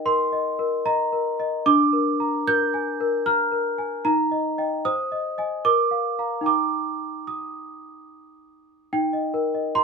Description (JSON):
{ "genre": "classical, lullaby for celesta", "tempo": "74 BPM", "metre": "3/4", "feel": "straight", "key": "Eb major", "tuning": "A4 = 440 Hz", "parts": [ { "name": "worn celesta", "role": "solo", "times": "0.0-9.8 s", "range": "D4 to G6", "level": "-21 LUFS", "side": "equal", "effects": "none" } ], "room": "moderate small room reverb, RT60 0.6 s", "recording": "minimal, uncompressed stereo recording", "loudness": "-21 LUFS", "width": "side -4 dB against mid", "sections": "0.0-8.9 A section", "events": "none", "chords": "0.0 Eb; 1.7 Bb7/D; 4.0 Eb; 4.9 Ab/C; 5.7 Bb; 6.5 Eb" }